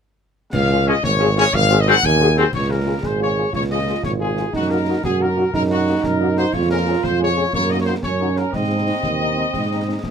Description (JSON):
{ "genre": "military-style march for wind band", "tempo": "120 BPM (dotted quarters)", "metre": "6/8", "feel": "straight", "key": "Db major", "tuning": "A4 = 439 Hz", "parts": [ { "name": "mellow trumpet section", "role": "melody", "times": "0.5-10.1 s", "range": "Gb4 to Ab5", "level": "-22 LUFS", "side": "left 3 dB", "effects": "none" }, { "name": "warm tuba", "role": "bass", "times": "0.5-10.1 s", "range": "Ab1 to Ab2", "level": "-20 LUFS", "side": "right 3 dB", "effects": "none" }, { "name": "concert snare drum, clash cymbals and concert bass drum", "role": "drums", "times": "0.5-10.1 s", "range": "none", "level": "-29 LUFS", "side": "left 2 dB", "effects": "none" }, { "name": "mellow French horn section", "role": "accompaniment", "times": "0.7-9.9 s", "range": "Ab3 to Ab4", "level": "-23 LUFS", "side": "left 4 dB", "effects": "none" }, { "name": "bright trombone section", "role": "sustained chords", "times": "0.9-2.4 s", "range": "Gb3 to Db4", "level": "-18 LUFS", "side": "left 4 dB", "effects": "none" }, { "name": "clear euphonium", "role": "second line", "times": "3.0-10.1 s", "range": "Bb3 to Ab4", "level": "-23 LUFS", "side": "right 6 dB", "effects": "none" } ], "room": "light reverb", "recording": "close, detailed microphones", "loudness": "-16 LUFS", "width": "side -7 dB against mid", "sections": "0.5-2.5 A section; 2.5-10.1 B section", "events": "none", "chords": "0.5 Db; 1.5 Ab7; 2.5 Db; 4.5 Ebm/Gb; 6.5 Db/F; 7.5 Ebm7/Gb; 8.5 Ab" }